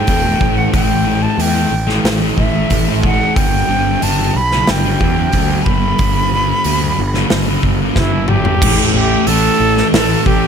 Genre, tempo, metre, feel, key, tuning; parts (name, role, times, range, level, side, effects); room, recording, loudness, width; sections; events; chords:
rock, shoegaze and dream pop; 91 BPM; 4/4; straight; A4 = 440 Hz
bright concert flute; melody; 0.0-10.5 s; E4 to B5; -18 LUFS; right 2 dB; analog delay
fuzz guitar; riff; 0.0-10.5 s; G2 to A3; -16 LUFS; left 1 dB; distortion, wide subtle chorus
fuzz fingered electric bass; bass; 0.1-10.5 s; E1 to E2; -18 LUFS; equal; overdrive
big rock drum kit; drums; 0.1-10.4 s; crash cymbal, hi-hat, kick drum, snare drum, toms; -18 LUFS; equal
light reverb, studio reverb; -12 LUFS; side -7 dB against mid
0.0-8.6 A section; 8.6-10.5 B section
drum fill 8.0-8.6
0.0 A7(no3); 3.4 G; 8.6 A5